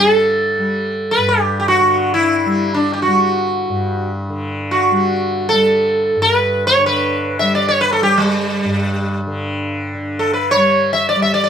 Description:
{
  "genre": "indian classical, Hindustani",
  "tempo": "free time",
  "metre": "none",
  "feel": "none",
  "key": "G raga yaman",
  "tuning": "A4 = 440 Hz",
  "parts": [
    { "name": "sitar", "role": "melody", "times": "0.0-11.5 s", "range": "G3 to E5", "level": "-14 LUFS", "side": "equal", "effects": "none" },
    { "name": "tanpura", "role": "drone", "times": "0.0-11.5 s", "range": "G2 to G3", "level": "-21 LUFS", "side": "left 1 dB", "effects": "none" }
  ],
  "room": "light reverb",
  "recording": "close, detailed microphones",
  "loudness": "-14 LUFS",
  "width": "side -8 dB against mid",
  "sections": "0.0-9.9 A section; 9.9-11.5 A section",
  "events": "none",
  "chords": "none"
}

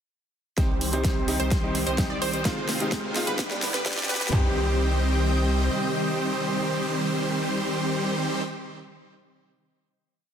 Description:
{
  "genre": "EDM, festival progressive house",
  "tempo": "128 BPM",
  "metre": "4/4",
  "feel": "straight",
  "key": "C harmonic minor",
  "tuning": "A4 = 442 Hz",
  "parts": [
    { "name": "bright concert grand piano", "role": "accompaniment", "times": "0.6-8.4 s", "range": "G2 to C5", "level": "-32 LUFS", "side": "equal", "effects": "sidechain pumping, digital delay" },
    { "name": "lush unison pad", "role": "sustained chords", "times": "0.6-8.4 s", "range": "C3 to Eb6", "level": "-34 LUFS", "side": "left 1 dB", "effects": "chorus, sidechain pumping" },
    { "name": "wide unison pluck", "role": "arpeggios", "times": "0.6-8.4 s", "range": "B4 to D5", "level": "-33 LUFS", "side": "right 1 dB", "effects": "sidechain pumping, digital delay" },
    { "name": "big supersaw lead", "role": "riff", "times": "0.6-8.4 s", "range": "D3 to D5", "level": "-27 LUFS", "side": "right 1 dB", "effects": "sidechain pumping, low-pass filter, digital delay" },
    { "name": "saturated sub bass", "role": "bass", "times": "0.6-5.7 s", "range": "F1 to G2", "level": "-28 LUFS", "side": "equal", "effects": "sidechain pumping" },
    { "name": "big-room dance drum kit", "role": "drums", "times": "0.6-4.4 s", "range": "handclaps, kick drum, toms", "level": "-25 LUFS", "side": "equal", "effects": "none" },
    { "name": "big-room dance drum kit", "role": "drums", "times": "0.6-4.4 s", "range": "hi-hat, snare drum", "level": "-30 LUFS", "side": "equal", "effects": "none" },
    { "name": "riser", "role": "sound effects", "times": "2.6-4.3 s", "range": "none", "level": "-41 LUFS", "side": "equal", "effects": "none" }
  ],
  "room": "moderate scoring stage reverb, RT60 1.7 s",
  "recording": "dense, heavily limited modern master, high-pass filter",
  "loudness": "-23 LUFS",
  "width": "side -8 dB against mid",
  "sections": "0.6-4.3 build; 4.3-8.1 final chord",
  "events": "build-up 0.6-4.3; drum fill 0.6-4.3; filter sweep on supersaw synth 0.6-4.3; filter sweep 0.6-4.3",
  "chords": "0.6 Cm; 2.5 Fm7; 3.4 G; 4.3 Cm"
}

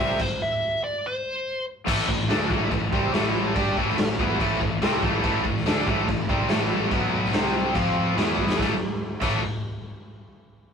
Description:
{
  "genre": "hard rock",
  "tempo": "143 BPM",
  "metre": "4/4",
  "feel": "straight",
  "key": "A minor",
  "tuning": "A4 = 439 Hz",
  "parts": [
    { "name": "nasal lead guitar with a parked wah", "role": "melody", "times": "0.0-1.6 s", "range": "C5 to E5", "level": "-26 LUFS", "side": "equal", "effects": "overdrive" },
    { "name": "raw garage guitar", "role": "riff", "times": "0.0-9.4 s", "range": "A2 to G4", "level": "-28 LUFS", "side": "left 1 dB", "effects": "overdrive" },
    { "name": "scooped high-gain guitar", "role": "riff", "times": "0.0-9.4 s", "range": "A2 to G4", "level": "-28 LUFS", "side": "left 7 dB", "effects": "distortion" },
    { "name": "tight distorted guitar", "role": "riff", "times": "0.0-9.4 s", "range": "A2 to G4", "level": "-30 LUFS", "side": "right 5 dB", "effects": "distortion" },
    { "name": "fuzz fingered electric bass", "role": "bass", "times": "0.0-9.4 s", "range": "A1 to G2", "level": "-31 LUFS", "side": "equal", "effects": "overdrive" },
    { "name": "raw garage drum kit", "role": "drums", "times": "0.2-9.3 s", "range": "crash cymbal, kick drum, snare drum", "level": "-25 LUFS", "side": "equal", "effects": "none" }
  ],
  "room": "moderate small room reverb, RT60 0.6 s",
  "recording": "rough rehearsal-room recording, warm saturation",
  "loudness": "-21 LUFS",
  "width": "side -6 dB against mid",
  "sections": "0.0-1.9 A section; 1.9-8.6 B section; 8.6-10.3 C section",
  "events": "stop 0.2-1.9; drum fill 8.4",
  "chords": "0.2 N.C.; 1.9 Am; 6.9 B5; 7.3 C5; 7.8 F5; 8.2 E5; 8.6 A5"
}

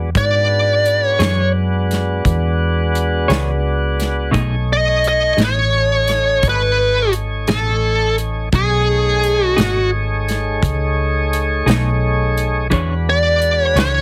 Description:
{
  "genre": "slow blues",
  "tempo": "57 BPM (dotted quarters)",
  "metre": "12/8",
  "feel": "straight",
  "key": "unclear",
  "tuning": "A4 = 437 Hz",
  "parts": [
    { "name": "tonewheel organ", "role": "sustained chords", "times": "0.0-14.0 s", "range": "F#3 to G#5", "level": "-25 LUFS", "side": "equal", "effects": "slow rotary speaker" },
    { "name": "hollow-body short-scale fingered electric bass", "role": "bass", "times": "0.0-14.0 s", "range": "G#1 to G#2", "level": "-21 LUFS", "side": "equal", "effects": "none" },
    { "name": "smooth overdriven lead guitar", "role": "melody", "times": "0.2-14.0 s", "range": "G#4 to D#5", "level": "-18 LUFS", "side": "equal", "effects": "none" },
    { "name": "natural country drum kit", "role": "drums", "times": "0.2-13.9 s", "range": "hi-hat, kick drum, snare drum", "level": "-23 LUFS", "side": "equal", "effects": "none" },
    { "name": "clean electric guitar", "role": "accompaniment", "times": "1.2-14.0 s", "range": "B2 to C#5", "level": "-22 LUFS", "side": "equal", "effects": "tremolo" }
  ],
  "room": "little or no reverb",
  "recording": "heavily compressed radio sound, faint mains hum",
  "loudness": "-16 LUFS",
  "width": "mono",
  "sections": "0.0-14.0 A section",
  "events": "none",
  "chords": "0.0 E13; 4.3 B13; 12.7 E13"
}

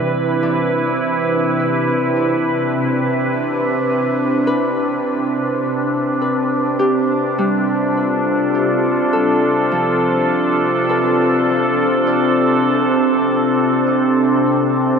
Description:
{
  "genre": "ambient",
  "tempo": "52 BPM",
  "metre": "4/4",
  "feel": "straight",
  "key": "unclear",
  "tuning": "A4 = 440 Hz",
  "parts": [
    { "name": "evolving wavetable pad", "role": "sustained chords", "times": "0.0-15.0 s", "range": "C3 to B4", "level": "-15 LUFS", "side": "equal", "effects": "chorus, built-in reverb" },
    { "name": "Celtic harp", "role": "arpeggios", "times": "0.0-15.0 s", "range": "E3 to D5", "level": "-25 LUFS", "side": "left 2 dB", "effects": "ping-pong delay" },
    { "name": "bowed-like drone", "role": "drone", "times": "0.0-14.6 s", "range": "C3", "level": "-29 LUFS", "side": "left 1 dB", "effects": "built-in reverb, phaser" }
  ],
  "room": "wet huge ambient reverb, RT60 6.9 s",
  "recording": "none",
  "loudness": "-14 LUFS",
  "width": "side -6 dB against mid",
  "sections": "0.0-14.5 A section",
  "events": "fade-out on harp 0.0-14.5; fade-out on synth drone 0.0-14.5",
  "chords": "0.0 Cmaj7; 5.1 Dm/C; 14.5 N.C."
}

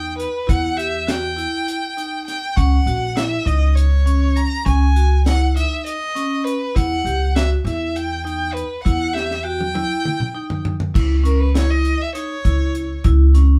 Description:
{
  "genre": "progressive instrumental, band music in an uneven meter",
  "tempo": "200 BPM (eighths)",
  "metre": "7/8",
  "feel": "straight",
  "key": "C# dorian",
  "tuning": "A4 = 440 Hz",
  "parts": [
    { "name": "warm violin", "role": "melody", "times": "0.0-13.0 s", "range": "A#4 to A#5", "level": "-26 LUFS", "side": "equal", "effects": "none" },
    { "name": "vibraphone with medium hard mallets", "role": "arpeggios", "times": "0.0-13.5 s", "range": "C#4 to G4", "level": "-27 LUFS", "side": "equal", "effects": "none" },
    { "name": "upright bass", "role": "bass", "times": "0.0-13.6 s", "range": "A#1 to E2", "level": "-19 LUFS", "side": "equal", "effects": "none" },
    { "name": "deep reggae drum kit", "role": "drums", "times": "0.2-13.5 s", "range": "crash cymbal, hi-hat, kick drum, snare drum, toms", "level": "-24 LUFS", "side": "equal", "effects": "none" }
  ],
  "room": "moderate studio reverb, RT60 0.5 s",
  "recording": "band playing live in one room",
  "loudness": "-19 LUFS",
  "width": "mono",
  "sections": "0.0-10.9 A section; 10.9-13.6 B section",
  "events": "drum fill 9.2-10.9; violin solo 10.9-13.6",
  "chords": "0.0 Em; 2.6 C#sus2; 6.8 Em; 10.9 C#m"
}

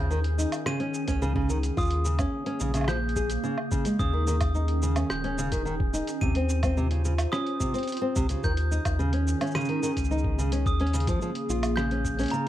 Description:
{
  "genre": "folktronica",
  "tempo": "108 BPM",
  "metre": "4/4",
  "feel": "straight",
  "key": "unclear",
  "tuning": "A4 = 440 Hz",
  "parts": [
    { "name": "warbly tape-like pad", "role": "sustained chords", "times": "0.0-12.5 s", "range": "Db3 to C5", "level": "-33 LUFS", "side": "right 1 dB", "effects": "chorus, built-in reverb" },
    { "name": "nylon-string guitar", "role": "arpeggios", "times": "0.0-12.4 s", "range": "C3 to Ab4", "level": "-30 LUFS", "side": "equal", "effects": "digital delay" },
    { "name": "warm sub bass", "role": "bass", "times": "0.0-12.3 s", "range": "Eb1 to Eb2", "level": "-27 LUFS", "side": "equal", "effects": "none" },
    { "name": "lo-fi sampler-style drum kit", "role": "drums", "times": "0.1-12.4 s", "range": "hi-hat, rim click, shaker, woodblock", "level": "-36 LUFS", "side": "right 1 dB", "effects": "studio reverb" },
    { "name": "glockenspiel with soft plastic mallets", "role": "second line", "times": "0.7-12.5 s", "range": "Bb5 to Eb7", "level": "-36 LUFS", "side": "right 2 dB", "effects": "digital delay" },
    { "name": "electronic kick drum", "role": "drums", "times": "1.1-12.2 s", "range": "none", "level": "-30 LUFS", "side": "equal", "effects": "studio reverb" }
  ],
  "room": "little or no reverb",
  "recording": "dark, warm production",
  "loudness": "-24 LUFS",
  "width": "side -13 dB against mid",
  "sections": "0.0-12.5 A section",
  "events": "none",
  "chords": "0.0 Eb7sus4; 1.8 Bbm7; 4.0 Eb7sus4; 6.2 Dbmaj7/Eb; 8.4 Eb7sus4; 10.7 Bbm7"
}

